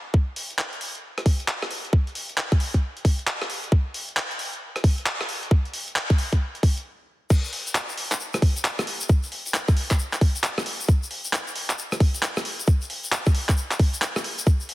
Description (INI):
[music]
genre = UK garage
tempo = 134 BPM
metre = 4/4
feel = swing 64% on 16ths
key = none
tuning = none
[part]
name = electronic kick drum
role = drums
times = 0.1-14.6 s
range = none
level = -19 LUFS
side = equal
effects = none
[part]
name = breakbeat sampler-style drum kit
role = drums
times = 0.4-14.7 s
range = crash cymbal, handclaps, hi-hat, rim click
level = -27 LUFS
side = equal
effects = overdrive, high-pass filter on snare, high-pass filter on hats, high-pass filter on cymbals, high-pass filter on room
[part]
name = egg shaker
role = percussion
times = 7.3-14.7 s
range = none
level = -34 LUFS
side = left 3 dB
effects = none
[sound]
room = light reverb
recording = heavily compressed radio sound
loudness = -22 LUFS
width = side -18 dB against mid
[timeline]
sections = 0.1-7.3 A section; 7.3-14.7 B section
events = build-up 0.1-7.3; stop 6.9-7.3; drop 7.3-14.7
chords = none